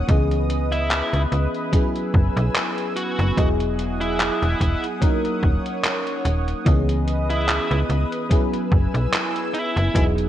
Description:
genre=vaporwave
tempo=73 BPM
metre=4/4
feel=swing 55% on 16ths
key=unclear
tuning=A4 = 440 Hz
part: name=FM electric piano with soft pad layer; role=accompaniment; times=0.0-10.3 s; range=E3 to D#5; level=-25 LUFS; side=equal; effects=wide subtle chorus, analog delay
part: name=lush unison pad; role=sustained chords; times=0.0-10.3 s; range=G#4 to E6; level=-30 LUFS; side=equal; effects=chorus, phaser
part: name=slap-like FM bass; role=bass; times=0.0-10.3 s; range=D#1 to C#2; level=-22 LUFS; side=equal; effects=none
part: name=detuned 8-bit digital drum machine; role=drums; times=0.1-10.3 s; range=handclaps, hi-hat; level=-26 LUFS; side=equal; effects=gated reverb
part: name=electronic kick drum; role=drums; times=0.1-10.1 s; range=none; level=-19 LUFS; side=equal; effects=none
part: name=bluesy overdriven lead guitar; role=melody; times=0.7-10.0 s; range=E4 to F#4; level=-29 LUFS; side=equal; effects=distortion, vintage 12-bit sampler grit, tape echo
room=light reverb, digital ambience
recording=cassette tape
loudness=-19 LUFS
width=side -12 dB against mid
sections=0.0-10.3 A section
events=none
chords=0.1 C#m9; 1.7 F#9sus4; 3.4 Emaj9; 5.0 D#m7; 6.7 C#m9; 8.3 F#9sus4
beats=| 0.09 0.91 1.73 2.56 | 3.38 4.20 5.02 5.84 | 6.67 7.49 8.31 9.13 | 9.95

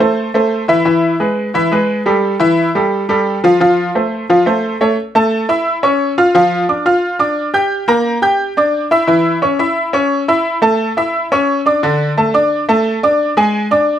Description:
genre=latin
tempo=175 BPM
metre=4/4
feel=straight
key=unclear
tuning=A4 = 443 Hz
part: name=bright upright piano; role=solo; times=0.0-14.0 s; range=D3 to G6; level=-12 LUFS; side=equal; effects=none
room=moderate studio reverb, RT60 0.6 s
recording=faint mains hum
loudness=-12 LUFS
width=side -10 dB against mid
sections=0.0-5.0 A section; 5.0-14.0 B section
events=none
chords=0.0 Am; 0.9 E; 2.2 A5; 3.6 F; 5.0 A; 6.3 Dm; 7.7 Gm; 9.1 A; 11.8 D5; 13.2 E7 (rootless)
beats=0.17 0.51 | 0.86 1.20 1.54 1.89 | 2.23 2.57 2.92 3.26 | 3.60 3.95 4.29 4.63 | 4.97 5.32 5.66 6.00 | 6.35 6.69 7.03 7.37 | 7.72 8.06 8.40 8.74 | 9.09 9.43 9.77 10.12 | 10.46 10.80 11.14 11.48 | 11.83 12.17 12.51 12.86 | 13.20 13.54 13.88

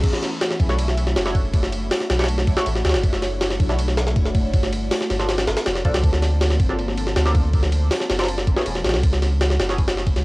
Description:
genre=drum and bass, jungle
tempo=160 BPM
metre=4/4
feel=straight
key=B minor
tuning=A4 = 440 Hz
part: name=soft dub sub bass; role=bass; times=0.0-10.2 s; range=E1 to D2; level=-22 LUFS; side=equal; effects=none
part: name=jungle sampler-style drum kit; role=drums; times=0.0-10.2 s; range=crash cymbal, hi-hat, kick drum, ride cymbal, snare drum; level=-20 LUFS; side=equal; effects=cassette tape
part: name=band-passed chord stab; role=stabs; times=0.7-9.8 s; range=E3 to C#5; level=-30 LUFS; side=right 1 dB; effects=phaser, analog chorus, cassette tape, dub echo
room=light reverb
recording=home recording on cassette, vinyl crackle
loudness=-18 LUFS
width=side -22 dB against mid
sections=0.0-10.2 A section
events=drop 0.0-10.2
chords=0.0 Bm11; 4.5 Gm11; 8.3 F#m11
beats=| 0.04 0.41 0.79 1.16 | 1.53 1.91 2.29 2.66 | 3.04 3.41 3.79 4.16 | 4.54 4.91 5.29 5.66 | 6.04 6.41 6.79 7.16 | 7.54 7.91 8.29 8.66 | 9.04 9.41 9.79 10.16

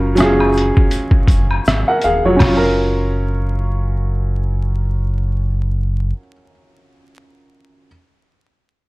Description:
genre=lo-fi hip hop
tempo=81 BPM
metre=4/4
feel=swing 56% on 16ths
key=F# major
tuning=A4 = 439 Hz
part: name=warm upright piano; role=accompaniment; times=0.0-7.9 s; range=F#3 to F#5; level=-17 LUFS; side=equal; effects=cassette tape
part: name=sub bass with octave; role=bass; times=0.0-6.1 s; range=D#1 to G#1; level=-18 LUFS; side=equal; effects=none
part: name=trip hop sampler-style drum kit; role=drums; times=0.2-2.6 s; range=hi-hat, kick drum, rim click, snare drum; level=-15 LUFS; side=equal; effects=none
part: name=tube shaker and woodblock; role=percussion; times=0.2-2.7 s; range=none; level=-28 LUFS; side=left 2 dB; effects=none
room=light reverb, digital ambience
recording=vinyl crackle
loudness=-14 LUFS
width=side -21 dB against mid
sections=0.0-2.4 A section; 2.4-5.4 B section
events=none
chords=0.0 F#maj7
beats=0.18 0.92 1.66 | 2.40 3.14 3.88 4.62

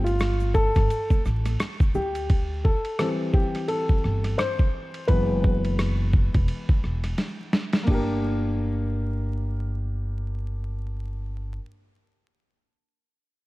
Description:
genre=hip hop, jazz-hop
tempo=86 BPM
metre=4/4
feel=swing 59% on 16ths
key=G dorian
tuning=A4 = 440 Hz
part: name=warm upright piano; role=accompaniment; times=0.0-11.6 s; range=E3 to C5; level=-28 LUFS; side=left 1 dB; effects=none
part: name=upright bass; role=bass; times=0.0-11.6 s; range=E1 to D2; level=-26 LUFS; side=equal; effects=none
part: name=dusty soul sampler-style drum kit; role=drums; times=0.1-8.1 s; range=crash cymbal, hi-hat, kick drum, ride cymbal, rim click, snare drum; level=-23 LUFS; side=equal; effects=overdrive
part: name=tube shaker and congas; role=percussion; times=0.1-2.3 s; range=none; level=-43 LUFS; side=right 7 dB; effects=none
room=light reverb, small room ambience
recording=dark, warm production, vinyl crackle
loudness=-22 LUFS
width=side -19 dB against mid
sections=0.0-7.9 A section; 7.9-10.7 B section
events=upright piano solo 0.0-7.9; drum fill 7.2-7.9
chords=0.0 G7sus2; 1.9 D9sus4; 5.1 F#9sus4; 7.9 Gm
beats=0.20 0.90 1.60 | 2.29 2.99 3.69 4.39 | 5.09 5.78 6.48 7.18 | 7.88 8.57 9.27 9.97

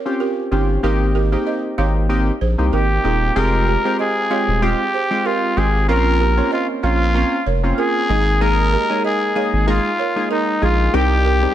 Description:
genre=afrobeats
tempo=95 BPM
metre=4/4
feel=swing 55% on 16ths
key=unclear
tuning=A4 = 440 Hz
part: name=warm analog keys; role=accompaniment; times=0.1-11.5 s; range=G3 to Ab4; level=-21 LUFS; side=left 1 dB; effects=chorus
part: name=balafon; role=riff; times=0.2-11.5 s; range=Eb4 to F5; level=-25 LUFS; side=right 10 dB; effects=none
part: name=saturated sub bass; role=bass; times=0.5-11.5 s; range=Eb1 to C2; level=-18 LUFS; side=equal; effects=none
part: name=growling trumpet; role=melody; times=2.7-11.5 s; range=Eb4 to Bb4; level=-19 LUFS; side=left 1 dB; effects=ping-pong delay
room=little or no reverb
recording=none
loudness=-15 LUFS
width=side -11 dB against mid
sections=0.0-3.4 A section; 3.4-11.5 B section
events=none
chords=0.0 Bbm69; 0.8 Abmaj9; 5.9 Bbmadd9; 8.1 Absus2; 10.9 Fmadd9 (rootless)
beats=0.20 | 0.83 1.46 2.10 2.73 | 3.36 3.99 4.62 5.25 | 5.88 6.52 7.15 7.78 | 8.41 9.04 9.67 10.30 | 10.94

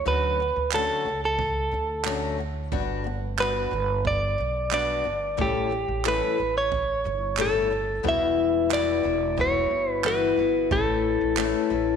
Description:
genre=acoustic pop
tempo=90 BPM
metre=4/4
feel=straight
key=unclear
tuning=A4 = 441 Hz
part: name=direct-recorded clean electric guitar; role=melody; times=0.0-12.0 s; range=G4 to E5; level=-25 LUFS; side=right 2 dB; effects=none
part: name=upright bass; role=bass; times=0.0-12.0 s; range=E1 to D2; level=-32 LUFS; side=right 1 dB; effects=none
part: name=picked old ladder-braced acoustic guitar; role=accompaniment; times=0.1-12.0 s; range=A2 to B4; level=-27 LUFS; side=left 12 dB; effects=none
part: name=jazz brush drum kit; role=drums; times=0.7-11.5 s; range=handclaps, kick drum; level=-32 LUFS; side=right 7 dB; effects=none
room=moderate echo chamber reverb, RT60 1.8 s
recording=1960s-style stereo with parts hard left and right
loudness=-22 LUFS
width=side -7 dB against mid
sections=0.0-8.0 A section; 8.0-12.0 B section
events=none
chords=0.0 Dmaj7; 2.7 Gmaj7; 5.4 A7; 8.0 Emadd9; 10.7 Aadd9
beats=| 0.06 0.73 1.39 2.06 | 2.72 3.39 4.05 4.72 | 5.39 6.05 6.72 7.38 | 8.05 8.71 9.38 10.04 | 10.71 11.38

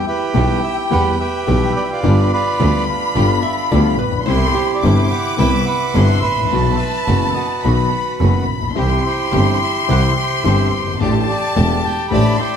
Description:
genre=tango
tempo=107 BPM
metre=4/4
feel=rubato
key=unclear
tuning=A4 = 440 Hz
part: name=bandoneon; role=melody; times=0.0-12.6 s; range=D4 to A5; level=-21 LUFS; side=right 3 dB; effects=none
part: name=rich studio violin section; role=second line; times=0.0-12.6 s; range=G5 to D6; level=-22 LUFS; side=left 3 dB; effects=tape echo
part: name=dark concert grand piano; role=accompaniment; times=0.3-12.3 s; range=E1 to G4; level=-20 LUFS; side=left 4 dB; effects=none
part: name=rich chamber string section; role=stabs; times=0.3-12.3 s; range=A3 to G4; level=-28 LUFS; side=right 1 dB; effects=none
part: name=clear double bass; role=bass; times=0.3-12.4 s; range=E1 to E2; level=-18 LUFS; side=right 1 dB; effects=none
part: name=archtop guitar, miked and amplified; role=second line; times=3.4-4.9, 12.1-12.6 s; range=G4 to E5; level=-26 LUFS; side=right 5 dB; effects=none
room=moderate concert hall reverb, RT60 2.2 s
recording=none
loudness=-14 LUFS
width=side -8 dB against mid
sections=0.0-12.6 A section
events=none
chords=0.0 Em; 2.0 G7; 4.3 Cmaj7; 6.5 Bsus4; 7.6 B; 8.8 C; 11.0 A7sus4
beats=0.35 0.91 1.47 | 2.03 2.59 3.15 3.71 | 4.27 4.83 5.39 5.94 | 6.50 7.07 7.63 8.19 | 8.76 9.32 9.88 10.44 | 11.00 11.56 12.12

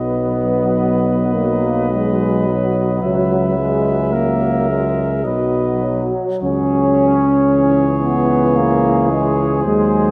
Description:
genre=classical, hymn-like piece for brass band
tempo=49-57 BPM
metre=3/4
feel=rubato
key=B major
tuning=A4 = 441 Hz
part: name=warm cornet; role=melody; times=0.0-10.1 s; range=B#4 to E5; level=-26 LUFS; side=equal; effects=none
part: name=warm flugelhorn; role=second line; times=0.0-10.1 s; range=G#4 to B4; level=-28 LUFS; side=equal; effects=none
part: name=warm euphonium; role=accompaniment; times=0.0-10.1 s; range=E3 to F#3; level=-25 LUFS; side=equal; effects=none
part: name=warm trombone section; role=accompaniment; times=0.0-10.1 s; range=F#3 to C#4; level=-20 LUFS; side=equal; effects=none
part: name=mellow tuba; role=bass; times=0.0-10.1 s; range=B1 to D#2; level=-22 LUFS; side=equal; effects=none
room=moderate scoring stage reverb, RT60 2.1 s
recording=none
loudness=-16 LUFS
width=mono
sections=0.0-10.1 A section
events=none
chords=0.0 B; 3.0 F#7/C#; 5.2 B; 6.4 C#m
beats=0.77 1.90 | 3.03 4.14 5.25 | 6.42 7.50 8.57 | 9.65

